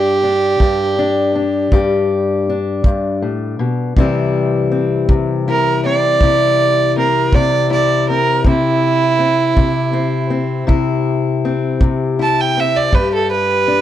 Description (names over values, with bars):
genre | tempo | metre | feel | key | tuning
acoustic country blues, solo or duo | 54 BPM (dotted quarters) | 12/8 | straight | unclear | A4 = 439 Hz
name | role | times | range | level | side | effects
rich fiddle | melody | 0.0-13.8 s | E4 to A5 | -15 LUFS | right 4 dB | none
fingerpicked steel-string acoustic guitar | accompaniment | 0.0-13.8 s | G2 to G4 | -16 LUFS | left 4 dB | none
kick drum | drums | 0.6-13.1 s | none | -14 LUFS | equal | none
room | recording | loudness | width
studio ambience | dry, close 1970s-style studio recording | -13 LUFS | side -11 dB against mid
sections
0.0-13.8 A section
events
none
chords
0.0 G5; 4.0 C; 12.9 G